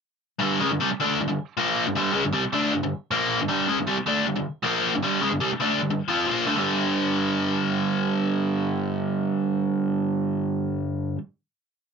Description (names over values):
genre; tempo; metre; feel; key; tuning
rock; 156 BPM; 4/4; straight; unclear; A4 = 438 Hz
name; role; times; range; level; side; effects
biting overdriven guitar; solo; 0.4-11.2 s; G2 to F4; -22 LUFS; equal; none
room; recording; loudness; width
moderate booth ambience, RT60 0.2 s; nothing above 7.6 kHz; -22 LUFS; side -6 dB against mid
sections
0.4-6.6 riff; 6.6-9.7 final chord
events
none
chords
0.4 G5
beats
| 0.41 0.79 1.18 1.57 | 1.95 2.34 2.72 3.11 | 3.49 3.88 4.26 4.65 | 5.03 5.42 5.80 6.19 | 6.57 6.96 7.35 7.73 | 8.12 8.51 8.90 9.28